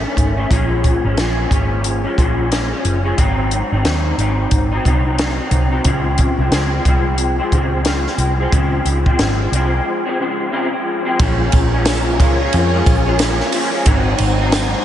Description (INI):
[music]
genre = indie pop, bedroom pop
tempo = 90 BPM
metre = 4/4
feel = swing 60% on 16ths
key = Db major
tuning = A4 = 436 Hz
[part]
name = electric guitar through a small old amp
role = accompaniment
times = 0.0-14.8 s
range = Ab2 to Eb4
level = -18 LUFS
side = left 1 dB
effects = ensemble chorus, warbly pitch drift, slapback echo
[part]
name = vintage muted picked electric bass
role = bass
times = 0.0-14.7 s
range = Gb1 to F2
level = -18 LUFS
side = equal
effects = none
[part]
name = compact cocktail drum kit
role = drums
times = 0.2-14.7 s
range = hi-hat, kick drum, ride cymbal, snare drum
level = -18 LUFS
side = equal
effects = none
[part]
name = phased string machine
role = sustained chords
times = 11.2-14.8 s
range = F4 to Ab5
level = -24 LUFS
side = right 2 dB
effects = ensemble chorus, phaser
[part]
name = tambourine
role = percussion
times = 11.2-14.7 s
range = none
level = -33 LUFS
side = right 9 dB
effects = none
[sound]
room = moderate lush hall reverb, RT60 2.1 s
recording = big arena sound, nothing above 10.8 kHz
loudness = -14 LUFS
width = side -11 dB against mid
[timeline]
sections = 0.0-11.2 A section; 11.2-14.8 B section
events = break 9.9-11.2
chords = 0.0 Gbm6 (rootless); 0.5 Bbm7; 3.2 Ab7; 5.9 Dbmaj7; 11.2 Bbm7; 13.9 Ab7